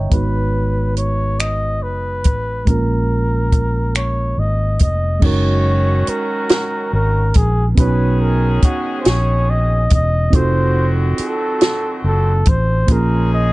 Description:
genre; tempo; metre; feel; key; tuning
slow six-eight R&B; 47 BPM (dotted quarters); 6/8; straight; unclear; A4 = 439 Hz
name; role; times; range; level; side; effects
mellow reed electric piano; accompaniment; 0.0-13.5 s; Ab3 to Bb5; -23 LUFS; right 4 dB; none
fingered electric bass; bass; 0.0-13.5 s; Fb1 to B1; -17 LUFS; equal; none
breathy flugelhorn; melody; 0.1-13.5 s; F#4 to D#5; -22 LUFS; equal; none
compact cocktail drum kit; drums; 0.1-13.1 s; crash cymbal, finger snaps, hi-hat, kick drum, snare drum; -14 LUFS; equal; none
clear horn section; stabs; 5.2-13.5 s; D#3 to Ab4; -28 LUFS; left 2 dB; none
room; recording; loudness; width
little or no reverb; dark, warm production, nothing above 10.5 kHz; -14 LUFS; side -20 dB against mid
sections
0.0-5.2 A section; 5.2-13.5 B section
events
none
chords
0.1 Abm7; 2.7 Bbm7; 5.2 Gb69; 7.8 Bmaj9; 10.3 F7b9; 12.9 Bbm7

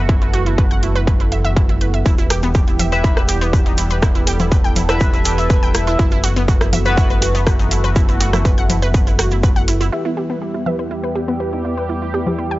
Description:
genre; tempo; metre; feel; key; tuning
melodic techno; 122 BPM; 4/4; straight; E minor; A4 = 440 Hz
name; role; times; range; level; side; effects
sweeping resonant pad; sustained chords; 0.0-12.6 s; E3 to A4; -24 LUFS; right 2 dB; chorus, sidechain pumping
analog pluck; arpeggios; 0.0-12.5 s; B3 to G5; -24 LUFS; right 2 dB; chorus, sidechain pumping, tape echo
round analog bass; bass; 0.0-9.9 s; E1 to F#1; -19 LUFS; equal; sidechain pumping
electronic kick drum; drums; 0.1-9.5 s; none; -16 LUFS; equal; distortion, overdrive, studio reverb
techno drum kit; drums; 0.1-12.4 s; congas, hi-hat, rim click; -22 LUFS; left 1 dB; overdrive, sidechain pumping on hats, low-pass filter on hats, studio reverb, low-pass filter on snare, sidechain pumping on perc, low-pass filter on perc
egg shaker; percussion; 2.1-9.9 s; none; -33 LUFS; right 1 dB; none
sync-sweep polysynth; stabs; 2.9-12.6 s; B3 to E5; -25 LUFS; left 2 dB; analog chorus, sidechain pumping, tape echo
expressive synth lead; melody; 9.9-12.5 s; B3 to B4; -26 LUFS; equal; ensemble chorus, sidechain pumping, tape echo
analog drone; drone; 9.9-12.6 s; E2; -29 LUFS; equal; chorus, sidechain pumping
room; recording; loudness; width
digital ambience; dry, gritty hardware recording, cassette tape, nothing above 7.7 kHz; -14 LUFS; side -18 dB against mid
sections
0.0-9.9 A section; 9.9-12.6 B section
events
filter sweep on drum 9.9-12.6; filter sweep on analog polysynth 9.9-12.6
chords
0.0 B7sus4/F#; 2.1 Em; 6.0 B7sus4/F#; 9.9 Em

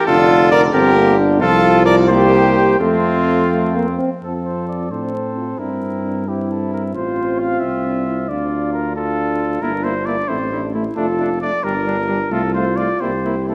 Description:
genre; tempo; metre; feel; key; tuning
classical, brass quintet; 89 BPM (dotted quarters); 6/8; rubato; F major; A4 = 440 Hz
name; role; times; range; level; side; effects
mellow trumpet; melody; 0.0-13.5 s; F4 to F5; -23 LUFS; equal; none
clear flugelhorn; second line; 0.0-13.5 s; C4 to Bb4; -24 LUFS; equal; none
warm French horn; accompaniment; 0.1-13.5 s; Bb3 to A4; -25 LUFS; equal; none
warm euphonium; accompaniment; 0.1-13.5 s; D3 to D4; -24 LUFS; equal; none
mellow tuba; bass; 0.1-13.5 s; F1 to A2; -23 LUFS; equal; none
room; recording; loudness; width
wet scoring stage reverb, RT60 1.6 s; vinyl crackle; -17 LUFS; mono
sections
0.0-4.2 A section; 4.2-13.5 A section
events
none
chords
0.1 Dm/F; 0.7 Gm; 1.4 F/C; 2.1 C5; 2.8 F; 5.6 C7/G; 7.0 F/A; 8.3 Dm; 9.6 Edim/G; 10.3 Am; 11.0 Dm/F; 11.6 Gm; 12.3 F/C; 13.0 C7

